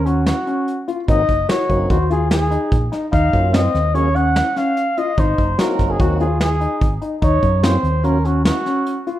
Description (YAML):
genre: progressive instrumental, band music in an uneven meter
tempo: 146 BPM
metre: 5/4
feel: straight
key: Eb dorian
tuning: A4 = 438 Hz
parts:
  - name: dark trumpet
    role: melody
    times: 0.0-9.0 s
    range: Gb4 to Gb5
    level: -21 LUFS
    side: equal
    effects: none
  - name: fingered electric bass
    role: bass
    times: 0.0-8.5 s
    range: Gb1 to Gb2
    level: -19 LUFS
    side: equal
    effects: none
  - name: warm grand piano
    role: arpeggios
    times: 0.1-9.2 s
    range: C4 to Gb4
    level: -22 LUFS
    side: left 2 dB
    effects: none
  - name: vintage brush drum kit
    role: drums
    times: 0.1-9.2 s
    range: hi-hat, kick drum, snare drum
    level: -20 LUFS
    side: equal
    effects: none
  - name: tonewheel organ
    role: accompaniment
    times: 1.1-8.2 s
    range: Gb3 to Ab4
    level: -26 LUFS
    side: right 2 dB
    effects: overdrive, stopped rotary speaker
room: moderate digital room reverb, RT60 1.1 s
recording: rough home demo mix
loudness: -15 LUFS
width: side -13 dB against mid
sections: 0.0-9.2 A section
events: none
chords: 0.0 Ebm7; 1.1 Ab7; 3.1 Ebm7; 5.2 Ab7; 7.2 Ebm7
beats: 0.26 0.67 | 1.08 1.49 1.90 2.31 2.72 | 3.13 3.54 3.95 4.36 4.77 | 5.17 5.58 6.00 6.40 6.81 | 7.22 7.63 8.04 8.45 8.86